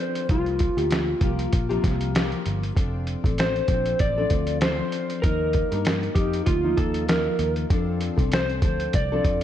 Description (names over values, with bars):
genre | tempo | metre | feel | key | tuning
indie pop, bedroom pop | 97 BPM | 4/4 | swing 55% on 16ths | F mixolydian | A4 = 440 Hz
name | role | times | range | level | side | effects
electric slide guitar | melody | 0.0-9.4 s | F4 to D5 | -26 LUFS | right 1 dB | lush chorus, diffuse ambient delay
nylon-string guitar | accompaniment | 0.0-9.4 s | C3 to Bb4 | -28 LUFS | left 4 dB | wide subtle chorus, warbly pitch drift
lo-fi sampler-style drum kit | drums | 0.2-9.4 s | hi-hat, kick drum, snare drum | -24 LUFS | equal | vintage 12-bit sampler grit
vintage muted picked electric bass | bass | 0.3-9.4 s | F1 to G2 | -28 LUFS | equal | none
room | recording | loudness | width
light reverb, digital ambience | none | -21 LUFS | side -10 dB against mid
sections
0.0-2.8 A section; 2.8-9.4 A section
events
none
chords
0.3 C7sus4; 2.8 F6; 5.2 Ebsus2; 7.7 F6